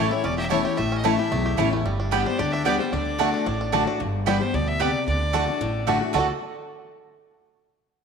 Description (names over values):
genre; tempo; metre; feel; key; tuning
bluegrass; 224 BPM; 4/4; straight; D major; A4 = 441 Hz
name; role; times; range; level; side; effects
bluegrass banjo; melody; 0.0-6.3 s; G3 to A4; -32 LUFS; right 5 dB; slapback echo
bright fiddle; melody; 0.0-6.3 s; A4 to E5; -30 LUFS; left 1 dB; none
picked steel-string acoustic guitar; accompaniment; 0.0-6.3 s; E2 to G4; -25 LUFS; left 7 dB; none
mandolin; stabs; 0.0-6.3 s; A3 to A5; -27 LUFS; right 10 dB; none
upright bass; bass; 0.0-6.3 s; E1 to D2; -28 LUFS; right 2 dB; none
room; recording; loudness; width
wet echo chamber reverb, RT60 1.7 s, studio ambience; 1960s-style stereo with parts hard left and right; -21 LUFS; side -6 dB against mid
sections
0.0-4.0 A section; 4.0-6.1 B section; 6.1-7.2 C section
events
none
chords
0.0 A; 1.9 G; 2.9 D; 4.0 G; 5.1 D